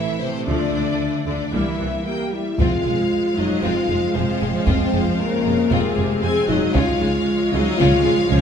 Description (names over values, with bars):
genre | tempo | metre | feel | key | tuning
cinematic, epic orchestral film score | 115 BPM | 4/4 | straight | F minor | A4 = 440 Hz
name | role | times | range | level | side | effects
warm symphonic violin section | melody | 0.0-8.4 s | Ab4 to Ab5 | -30 LUFS | left 5 dB | none
clear symphonic violin section | second line | 0.0-8.4 s | C4 to Db5 | -29 LUFS | left 3 dB | none
dark French horn section | sustained chords | 0.0-8.4 s | Ab3 to Ab4 | -22 LUFS | left 3 dB | none
warm trombone section | sustained chords | 0.0-8.4 s | E3 to Bb3 | -28 LUFS | right 5 dB | none
rich studio cello section | bass | 0.0-8.4 s | F2 to E3 | -27 LUFS | right 2 dB | none
rich symphonic viola section | accompaniment | 0.5-8.4 s | C3 to C4 | -26 LUFS | right 1 dB | none
clear symphonic double bass section | bass | 0.5-8.4 s | F1 to D2 | -26 LUFS | right 2 dB | none
rich symphonic string section | sustained chords | 2.6-8.4 s | Ab3 to F5 | -28 LUFS | equal | none
taiko ensemble | drums | 2.6-7.2 s | none | -24 LUFS | equal | none
room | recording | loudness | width
wet recital hall reverb, RT60 1.5 s | recorded in a church or concert hall | -17 LUFS | side -7 dB against mid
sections
0.0-2.6 A section; 2.6-8.4 B section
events
none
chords
0.5 Dm; 1.5 C7; 2.6 Fm; 6.8 Db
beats
| 0.47 1.00 1.53 2.06 | 2.59 3.12 3.64 4.16 | 4.68 5.20 5.72 6.24 | 6.75 7.27 7.79 8.31